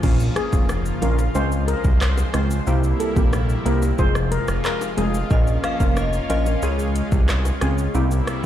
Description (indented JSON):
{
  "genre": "dancehall",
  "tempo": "91 BPM",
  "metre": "4/4",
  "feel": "straight",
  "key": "Bb minor",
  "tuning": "A4 = 440 Hz",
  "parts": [
    { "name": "glassy wavetable pluck", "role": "accompaniment", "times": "0.0-8.4 s", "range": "F3 to Bb4", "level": "-26 LUFS", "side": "right 2 dB", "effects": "chorus" },
    { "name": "lush unison pad", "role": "sustained chords", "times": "0.0-8.5 s", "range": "C3 to C5", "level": "-28 LUFS", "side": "left 1 dB", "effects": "chorus, sidechain pumping" },
    { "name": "fat analog bass", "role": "bass", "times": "0.0-8.2 s", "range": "F1 to Db2", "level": "-21 LUFS", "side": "equal", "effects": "none" },
    { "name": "afro-pop drum kit", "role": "drums", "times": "0.0-8.4 s", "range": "crash cymbal, handclaps, hi-hat, kick drum, rim click, shaker", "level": "-22 LUFS", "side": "equal", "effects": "none" },
    { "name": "steel pan", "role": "melody", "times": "0.4-5.1 s", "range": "Ab4 to C5", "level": "-28 LUFS", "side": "left 3 dB", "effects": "digital delay" },
    { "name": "bongos", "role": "percussion", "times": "0.7-7.8 s", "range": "none", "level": "-36 LUFS", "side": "left 6 dB", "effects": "none" },
    { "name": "synth chime", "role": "second line", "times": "5.3-7.9 s", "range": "Db5 to F5", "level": "-29 LUFS", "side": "left 3 dB", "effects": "ensemble chorus, digital delay" }
  ],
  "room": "little or no reverb",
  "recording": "played on a big sound system in a bare room, large studio reverb",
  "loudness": "-18 LUFS",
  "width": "side -11 dB against mid",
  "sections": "0.0-8.5 A section",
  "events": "none",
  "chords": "0.0 Bbm; 1.4 Dbmaj7; 2.7 C7; 4.0 Fm; 5.3 Bbm; 6.6 Dbmaj7; 7.9 C7",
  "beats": "| 0.03 0.69 1.35 2.01 | 2.67 3.33 3.99 4.65 | 5.31 5.97 6.63 7.29 | 7.95"
}